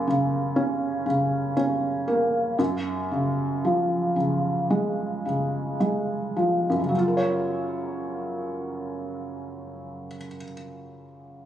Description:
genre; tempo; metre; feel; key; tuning
pop; 52-60 BPM; 4/4; straight; F# major; A4 = 440 Hz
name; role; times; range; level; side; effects
felt-muted upright piano; accompaniment; 0.0-11.5 s; F#2 to C#5; -24 LUFS; equal; none
room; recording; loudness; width
light reverb; recorded on a phone in the room, club reverb, compression; -23 LUFS; side -11 dB against mid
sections
0.0-6.9 A section; 6.9-11.5 B section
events
slowing down 0.0-6.9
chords
0.0 F#; 2.6 C#/F#; 6.9 F#maj7

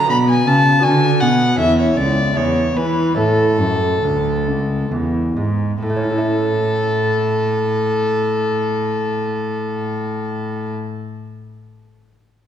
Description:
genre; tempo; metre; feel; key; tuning
classical, baroque-style sonata movement with continuo; 65-82 BPM; 3/4; straight; A major; A4 = 437 Hz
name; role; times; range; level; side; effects
rich violin; melody; 0.0-10.7 s; A4 to B5; -19 LUFS; left 2 dB; none
lute; accompaniment; 0.0-11.1 s; D2 to E5; -22 LUFS; right 1 dB; none
rich cello; bass; 0.0-10.7 s; C#2 to E3; -19 LUFS; right 1 dB; none
room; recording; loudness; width
wet scoring stage reverb, RT60 1.8 s; heard from further back in the room; -15 LUFS; side -9 dB against mid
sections
0.0-5.8 A section; 5.8-11.4 B section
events
slowing down 0.0-5.8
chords
0.1 Bm; 0.8 Bm/D; 1.6 A/E; 2.4 E7; 3.2 A

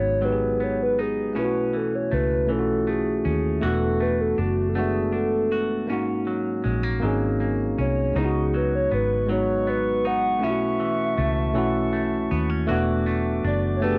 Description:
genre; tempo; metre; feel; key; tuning
slow six-eight R&B; 53 BPM (dotted quarters); 6/8; straight; C# minor; A4 = 440 Hz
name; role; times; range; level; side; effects
hollow clarinet-like synth lead; melody; 0.0-14.0 s; F#4 to F#5; -28 LUFS; equal; chorus, cassette tape
semi-hollow electric guitar; second line; 0.0-14.0 s; G#2 to F#4; -34 LUFS; equal; cassette tape
mellow tine electric piano; accompaniment; 0.0-14.0 s; G#3 to G#4; -28 LUFS; equal; cassette tape
vintage muted fingered electric bass; bass; 0.0-14.0 s; E1 to D#2; -30 LUFS; equal; none
warm woodwind section; sustained chords; 8.2-14.0 s; A3 to D6; -37 LUFS; equal; cassette tape
room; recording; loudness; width
moderate studio reverb, RT60 0.5 s; home recording on cassette; -24 LUFS; mono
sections
0.0-14.0 A section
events
soft synth lead solo 0.0-14.0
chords
0.0 C#9sus4; 1.4 B9sus4; 3.6 E9sus4; 5.9 G#9sus4; 8.2 C#9sus4; 10.4 B9sus4; 12.7 E9sus4

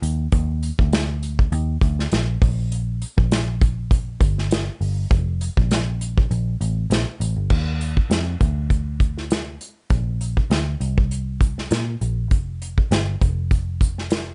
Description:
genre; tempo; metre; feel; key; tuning
indie pop, bedroom pop; 100 BPM; 4/4; swing 55% on 16ths; Bb major; A4 = 440 Hz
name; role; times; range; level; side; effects
vintage muted picked electric bass; bass; 0.0-14.3 s; F1 to Bb2; -25 LUFS; equal; none
unplugged drum kit; drums; 0.0-14.3 s; crash cymbal, hi-hat, kick drum, snare drum; -22 LUFS; equal; none
room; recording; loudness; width
little or no reverb; nothing above 10.7 kHz; -21 LUFS; mono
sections
0.0-7.5 A section; 7.5-14.3 B section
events
none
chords
none

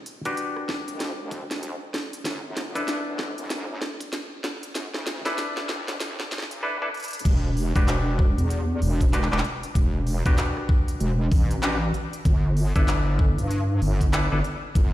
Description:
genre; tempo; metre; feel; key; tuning
glitch hop; 96 BPM; 4/4; swing 61% on 16ths; E minor; A4 = 441 Hz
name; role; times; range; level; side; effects
clav; stabs; 0.0-14.4 s; D4 to B4; -31 LUFS; left 2 dB; sidechain pumping, low-pass filter, ping-pong delay
drum and bass drum kit; drums; 0.1-14.9 s; crash cymbal, handclaps, hi-hat, rim click, snare drum; -32 LUFS; equal; none
electronic kick drum; drums; 0.3-14.9 s; none; -21 LUFS; equal; high-pass filter on kick, high-pass filter on room
wobble bass; bass; 0.9-14.9 s; E1 to G2; -24 LUFS; equal; chorus, overdrive, high-pass filter
room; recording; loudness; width
digital ambience; played on a big sound system in a bare room, stone room reverb, high-pass filter; -22 LUFS; side -15 dB against mid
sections
0.0-7.3 A section; 7.3-14.9 B section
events
build-up 0.0-7.3; drum fill 0.0-6.6, 6.9-7.3; filter sweep on clav 0.0-7.3; filter sweep 0.0-7.3; drop 7.3-14.9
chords
0.0 Em7; 2.3 G6; 7.3 Em7; 12.3 G6

